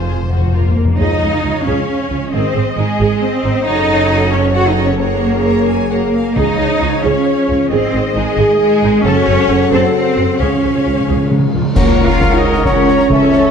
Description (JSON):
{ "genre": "cinematic, heroic adventure film score", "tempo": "134 BPM", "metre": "3/4", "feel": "straight", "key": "Db major", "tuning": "A4 = 440 Hz", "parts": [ { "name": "rich studio violin section", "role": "melody", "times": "0.0-13.5 s", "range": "Bb4 to Bb5", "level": "-28 LUFS", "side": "left 5 dB", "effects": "none" }, { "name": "rich symphonic viola section", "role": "accompaniment", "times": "0.0-13.5 s", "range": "F3 to Eb5", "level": "-20 LUFS", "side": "right 2 dB", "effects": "none" }, { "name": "rich symphonic cello section", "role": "bass", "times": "0.0-13.5 s", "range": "F2 to Gb4", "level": "-16 LUFS", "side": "right 1 dB", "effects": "none" }, { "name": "rich symphonic double bass section", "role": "bass", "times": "0.0-13.5 s", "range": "F1 to Db2", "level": "-19 LUFS", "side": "right 3 dB", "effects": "none" }, { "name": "timpani", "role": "percussion", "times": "0.0-0.9, 6.4-7.0, 10.4-13.5 s", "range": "F2 to Db3", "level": "-19 LUFS", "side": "left 2 dB", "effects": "none" }, { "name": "rich symphonic violin section", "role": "second line", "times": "0.1-13.5 s", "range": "F4 to Bb5", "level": "-21 LUFS", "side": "left 4 dB", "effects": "none" }, { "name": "dark French horn section", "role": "sustained chords", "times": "1.0-13.5 s", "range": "Bb3 to Eb5", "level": "-22 LUFS", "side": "left 5 dB", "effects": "none" }, { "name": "dark trombone section", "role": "sustained chords", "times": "1.0-13.3 s", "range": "Ab2 to C#4", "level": "-24 LUFS", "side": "right 3 dB", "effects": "none" }, { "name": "cymbal swell, clash cymbals and concert bass drum", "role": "percussion", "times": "9.1-12.6 s", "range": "none", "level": "-20 LUFS", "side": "left 1 dB", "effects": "none" }, { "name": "concert flute", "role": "second line", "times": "11.8-13.5 s", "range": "E5 to Gb5", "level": "-23 LUFS", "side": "left 3 dB", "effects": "none" }, { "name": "mellow oboe", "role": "second line", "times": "11.8-13.5 s", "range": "Db5", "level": "-24 LUFS", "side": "left 2 dB", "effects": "none" }, { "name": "warm clarinet", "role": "second line", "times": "11.8-13.5 s", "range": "Db5", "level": "-22 LUFS", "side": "right 2 dB", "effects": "none" }, { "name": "warm trumpet", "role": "stabs", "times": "11.8-13.5 s", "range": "Bb4 to F5", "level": "-20 LUFS", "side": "right 2 dB", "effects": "none" }, { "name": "concert snare drum, clash cymbals and concert bass drum", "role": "drums", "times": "11.8-13.4 s", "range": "none", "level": "-21 LUFS", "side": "left 1 dB", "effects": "none" } ], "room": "moderate scoring stage reverb, RT60 1.6 s", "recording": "dark, warm production", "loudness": "-11 LUFS", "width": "side -7 dB against mid", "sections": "1.0-11.8 A section; 11.8-13.5 B section", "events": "timpani fill 0.0-1.0, 10.4-11.8; band accent 11.8-12.2", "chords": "0.0 F5; 1.0 Db; 2.3 Ab; 3.7 Gbm; 5.0 Gbadd9; 6.4 Db; 7.7 Ab; 9.1 Gbm; 10.4 Db; 11.8 Gb/Db", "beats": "0.07 0.53 | 0.99 1.44 1.88 | 2.33 2.77 3.22 | 3.66 4.10 4.55 | 5.00 5.45 5.91 | 6.37 6.82 7.26 | 7.71 8.16 8.60 | 9.05 9.50 9.94 | 10.40 10.85 11.30 | 11.76 12.21 12.66 | 13.10" }